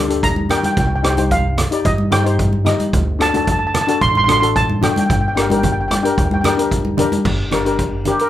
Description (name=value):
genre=calypso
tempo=111 BPM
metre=4/4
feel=straight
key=G minor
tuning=A4 = 441 Hz
part: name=steel pan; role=melody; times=0.0-8.3 s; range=G4 to C6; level=-19 LUFS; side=right 1 dB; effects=plate reverb
part: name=steel pan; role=accompaniment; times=0.0-8.3 s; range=D4 to Eb5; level=-20 LUFS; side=left 5 dB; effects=none
part: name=upright bass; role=bass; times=0.0-8.1 s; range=G1 to G2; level=-21 LUFS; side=equal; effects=none
part: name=street-band drum kit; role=drums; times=0.1-8.3 s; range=crash cymbal, hi-hat, kick drum, rim click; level=-20 LUFS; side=right 1 dB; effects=none
part: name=congas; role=percussion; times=0.4-8.2 s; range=none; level=-23 LUFS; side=right 1 dB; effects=none
room=moderate small room reverb, RT60 0.5 s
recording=none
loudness=-14 LUFS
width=side -12 dB against mid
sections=0.0-7.2 A section; 7.2-8.3 B section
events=steel pan solo 7.2-8.3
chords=0.0 Gm; 0.8 Cm; 2.9 D; 5.1 Gm